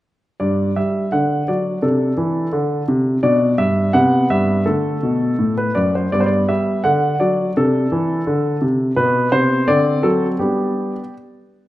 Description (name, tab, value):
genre	classical-period piano sonatina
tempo	84 BPM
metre	2/4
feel	straight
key	G major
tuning	A4 = 439 Hz
part	clear grand piano	solo	0.4-11.1 s	F#2 to F#5	-15 LUFS	equal	none
room	moderate recital hall reverb, RT60 1.4 s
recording	dark, warm production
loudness	-15 LUFS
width	side -15 dB against mid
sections	0.4-11.7 A section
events	none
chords	0.4 G5; 1.1 D; 1.8 D5/C; 3.2 G/B; 4.0 Cmaj7; 4.7 D; 6.1 G; 6.9 D; 7.6 D5/C; 9.0 N.C.; 9.7 D7; 10.4 G